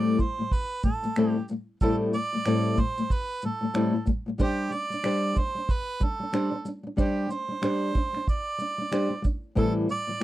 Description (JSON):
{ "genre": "acoustic pop", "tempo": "93 BPM", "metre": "4/4", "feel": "swing 60% on 16ths", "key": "A minor", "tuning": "A4 = 442 Hz", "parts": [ { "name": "warm harmonica", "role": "melody", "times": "0.0-10.2 s", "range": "G4 to D5", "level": "-31 LUFS", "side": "right 3 dB", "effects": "none" }, { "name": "flamenco guitar", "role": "accompaniment", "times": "0.0-10.2 s", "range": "A2 to C5", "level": "-26 LUFS", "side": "left 1 dB", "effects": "none" }, { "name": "cloth-damped thuddy drum kit", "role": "drums", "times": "0.2-10.2 s", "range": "finger snaps, kick drum, shaker", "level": "-27 LUFS", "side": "right 1 dB", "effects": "none" } ], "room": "little or no reverb", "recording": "dry, close 1970s-style studio recording", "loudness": "-25 LUFS", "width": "side -14 dB against mid", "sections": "0.0-10.2 A section", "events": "none", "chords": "0.0 Am7; 4.4 Gsus4; 9.6 Am7", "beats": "0.52 1.16 | 1.81 2.46 3.10 3.75 | 4.40 5.04 5.69 6.34 | 6.98 7.63 8.28 8.93 | 9.57 10.22" }